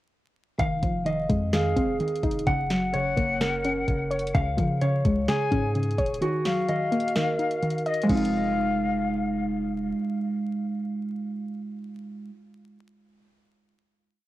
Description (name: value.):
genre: hip hop, trap.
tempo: 128 BPM.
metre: 4/4.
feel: half-time.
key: F phrygian.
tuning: A4 = 440 Hz.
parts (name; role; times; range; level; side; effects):
warbly dusty pluck; accompaniment; 0.6-12.4 s; Db3 to Eb5; -28 LUFS; equal; chorus, cassette tape.
mellow electric guitar; arpeggios; 0.6-12.4 s; Ab3 to Gb5; -28 LUFS; right 1 dB; cassette tape, analog delay.
long sustained 808-style bass; bass; 0.6-9.9 s; Eb1 to Db3; -31 LUFS; equal; none.
trap drum kit; drums; 0.6-8.3 s; crash cymbal, hi-hat, kick drum, snare drum; -29 LUFS; equal; cassette tape.
jazz flute; second line; 1.5-9.5 s; Eb5 to Ab5; -31 LUFS; left 4 dB; cassette tape, analog delay.
room: little or no reverb.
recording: home recording on cassette, vinyl crackle.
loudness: -23 LUFS.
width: side -15 dB against mid.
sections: 0.6-8.1 hook; 8.1-11.8 final chord.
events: kick muted 6.2-8.1.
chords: 0.6 Fm7; 2.5 Gb; 4.3 Db; 6.2 Ebm; 8.1 Fm7.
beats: | 0.59 1.06 1.53 2.00 | 2.47 2.94 3.41 3.88 | 4.34 4.81 5.28 5.75 | 6.22 6.69 7.16 7.63 | 8.10 8.56 9.03 9.50 | 9.97 10.44 10.91 11.38.